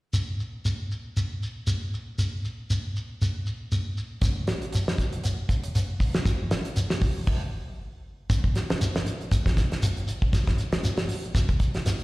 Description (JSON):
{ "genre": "afrobeat", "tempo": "118 BPM", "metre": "4/4", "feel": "swing 56% on 16ths", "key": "none", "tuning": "none", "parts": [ { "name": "shekere", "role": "percussion", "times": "0.1-12.0 s", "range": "none", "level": "-27 LUFS", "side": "equal", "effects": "slapback echo" }, { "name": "damped 70s drum kit", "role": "drums", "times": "4.2-12.0 s", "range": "crash cymbal, hi-hat, kick drum, snare drum", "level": "-25 LUFS", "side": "equal", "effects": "slapback echo" } ], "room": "light reverb", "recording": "live gig heard through the venue's PA, recital hall reverb", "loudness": "-24 LUFS", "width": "side -21 dB against mid", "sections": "0.1-8.3 A section; 8.3-12.0 B section", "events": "stop 7.3-8.3", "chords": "none", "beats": "| 0.14 0.65 1.16 1.67 | 2.18 2.69 3.21 3.72 | 4.23 4.74 5.25 5.76 | 6.27 6.78 7.28 7.79 | 8.30 8.81 9.32 9.83 | 10.34 10.84 11.35 11.86" }